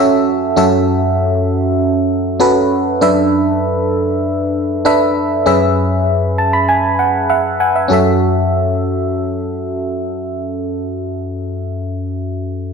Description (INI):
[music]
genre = pop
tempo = 98 BPM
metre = 4/4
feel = straight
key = F# minor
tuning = A4 = 440 Hz
[part]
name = FM electric piano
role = solo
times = 0.0-12.7 s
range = F#2 to B5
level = -13 LUFS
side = equal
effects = chorus, phaser
[sound]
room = moderate lush hall reverb, RT60 1.7 s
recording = none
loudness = -13 LUFS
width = side -5 dB against mid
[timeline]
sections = 0.0-7.9 A section; 7.9-10.4 B section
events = FM electric piano fill 6.1-7.9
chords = 0.0 F#m7; 3.0 E7sus4/F#; 5.5 C#m7/F#; 7.9 F#m7